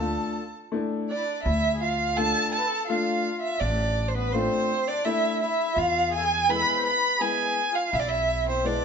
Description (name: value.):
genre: klezmer.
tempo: 84 BPM.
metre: 3/4.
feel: straight.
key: D dorian sharp4.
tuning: A4 = 440 Hz.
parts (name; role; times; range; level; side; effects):
warm violin; melody; 0.0-8.8 s; B4 to B5; -25 LUFS; right 3 dB; none.
accordion; second line; 0.0-8.8 s; B3 to C5; -31 LUFS; left 6 dB; none.
warm upright piano; accompaniment; 0.0-8.8 s; G#3 to F4; -29 LUFS; left 3 dB; none.
upright bass; bass; 0.0-8.8 s; A1 to E2; -29 LUFS; equal; none.
room: wet stone room reverb, RT60 1.3 s.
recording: band playing live in one room, nothing above 7.7 kHz.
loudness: -23 LUFS.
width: side -6 dB against mid.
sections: 0.0-1.5 A section; 1.5-8.8 B section.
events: violin solo 0.0-1.5.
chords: 0.0 Dm; 5.8 E.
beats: 0.01 0.74 | 1.46 2.18 2.90 | 3.62 4.34 5.06 | 5.78 6.49 7.21 | 7.92 8.64.